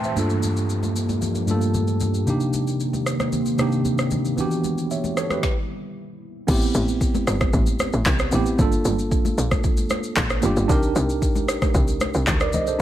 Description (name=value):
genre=amapiano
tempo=114 BPM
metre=4/4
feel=straight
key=unclear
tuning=A4 = 441 Hz
part: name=mellow tine electric piano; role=accompaniment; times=0.0-12.8 s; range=G2 to C6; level=-23 LUFS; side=right 2 dB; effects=medium stereo tremolo
part: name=deep dark ambient pad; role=sustained chords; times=0.0-5.4 s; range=D3 to G4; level=-29 LUFS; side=left 2 dB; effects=chorus, built-in reverb, sidechain pumping
part: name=afro-pop drum kit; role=drums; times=0.0-12.8 s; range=crash cymbal, handclaps, kick drum, rim click, shaker, snare drum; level=-23 LUFS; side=equal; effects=overdrive
part: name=downlifter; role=sound effects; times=0.0-2.3 s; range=none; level=-39 LUFS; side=left 1 dB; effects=none
part: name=congas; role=percussion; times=0.2-12.7 s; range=none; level=-31 LUFS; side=left 3 dB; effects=none
part: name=tight log drum bass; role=bass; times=6.5-12.8 s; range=G1 to D2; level=-24 LUFS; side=equal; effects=none
room=little or no reverb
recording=none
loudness=-19 LUFS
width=side -12 dB against mid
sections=0.0-6.5 A section; 6.5-12.8 B section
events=stop 5.4-6.5; drop 6.5-12.8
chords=0.2 Gm7; 2.3 Cm7; 4.4 Em7; 6.5 Am7; 8.6 Gm7; 10.7 Cm7